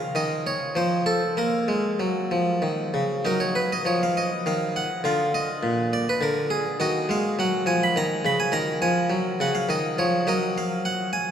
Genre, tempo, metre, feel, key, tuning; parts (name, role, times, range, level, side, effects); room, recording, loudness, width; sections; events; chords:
classical, baroque-style suite movement for harpsichord; 94-106 BPM; 3/4; rubato; Bb minor, Eb minor from 3.2 s; A4 = 440 Hz
harpsichord; solo; 0.0-11.3 s; Bb2 to Cb6; -22 LUFS; equal
wet cathedral reverb, RT60 6.1 s; dark, warm production; -22 LUFS; side -8 dB against mid
0.0-3.2 A section; 3.2-11.3 A section
0.0 N.C.; 1.4 Bbm; 3.2 Ebm/Gb; 4.4 N.C.; 5.0 Bb; 6.8 Ebm; 8.0 Bmaj13; 8.5 Ebm; 10.3 Gbmaj13